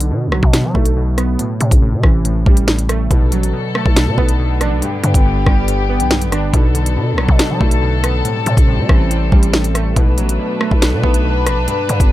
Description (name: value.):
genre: hip hop, drill.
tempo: 140 BPM.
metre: 4/4.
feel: half-time.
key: B phrygian.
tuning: A4 = 444 Hz.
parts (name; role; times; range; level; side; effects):
glassy digital keys; accompaniment; 0.0-12.1 s; G2 to D4; -19 LUFS; right 1 dB; chorus, low-pass filter.
growling 808-style bass; bass; 0.0-12.1 s; G1 to F#3; -17 LUFS; equal; none.
drill drum kit; drums; 0.0-12.1 s; hi-hat, kick drum, rim click, snare drum; -14 LUFS; equal; none.
dark studio string section; sustained chords; 3.1-12.1 s; D3 to B4; -21 LUFS; left 3 dB; none.
room: little or no reverb.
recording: none.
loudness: -12 LUFS.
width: side -15 dB against mid.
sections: 0.0-12.1 A section.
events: filter sweep on synth keys 0.0-3.1.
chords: 0.0 Bm7; 1.4 Am7; 3.1 Bm7; 4.8 G; 6.5 Bm7; 8.2 Am7; 10.0 Bm7.